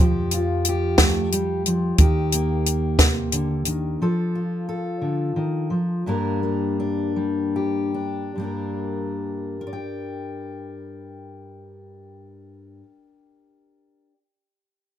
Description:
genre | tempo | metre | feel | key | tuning
indie folk with a building arrangement | 48-60 BPM (dotted quarters) | 6/8 | straight | G minor | A4 = 440 Hz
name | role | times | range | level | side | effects
fingerpicked steel-string acoustic guitar | accompaniment | 0.0-14.2 s | G2 to G5 | -24 LUFS | left 1 dB | none
upright bass | bass | 0.0-3.9 s | Eb2 to F2 | -27 LUFS | equal | none
compact cocktail drum kit | drums | 0.3-3.8 s | hi-hat, kick drum, snare drum | -17 LUFS | equal | none
room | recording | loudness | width
light reverb, small room ambience | none | -21 LUFS | side -11 dB against mid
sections
0.0-8.4 A section; 8.4-13.4 B section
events
slowing down 4.0-8.4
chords
0.0 Fadd9; 2.0 Eb; 4.0 Dm/F; 6.0 Gm

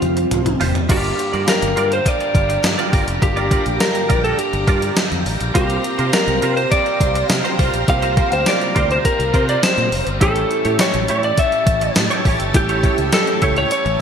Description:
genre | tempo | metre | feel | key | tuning
1980s-style pop | 103 BPM | 4/4 | straight | unclear | A4 = 440 Hz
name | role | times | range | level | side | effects
lightly driven lead guitar | melody | 0.0-14.0 s | F4 to F5 | -20 LUFS | equal | none
warm concert grand piano | accompaniment | 0.0-14.0 s | G3 to G4 | -27 LUFS | left 3 dB | none
ensemble organ-string | sustained chords | 0.0-14.0 s | F3 to Bb5 | -25 LUFS | equal | ensemble chorus
fingered electric bass | bass | 0.0-14.0 s | F1 to C3 | -23 LUFS | equal | none
gated 80s digital drum machine | drums | 0.0-14.0 s | crash cymbal, hi-hat, kick drum, snare drum, tambourine, toms | -19 LUFS | equal | gated reverb, gated reverb snare, overdrive
direct-recorded clean electric guitar | riff | 0.2-13.9 s | E4 to D5 | -26 LUFS | right 4 dB | ensemble chorus
distorted electric guitar | accompaniment | 0.9-14.0 s | G2 to C4 | -28 LUFS | right 1 dB | distortion, lush chorus
room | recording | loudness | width
moderate lush hall reverb, RT60 1.7 s, digital ambience | bright 1980s-style digital production, lossy compression artefacts | -15 LUFS | side -7 dB against mid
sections
0.9-14.0 A section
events
drum fill 0.0-0.9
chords
0.0 Csus4; 0.9 Gm7; 5.6 C7sus4; 10.2 A7

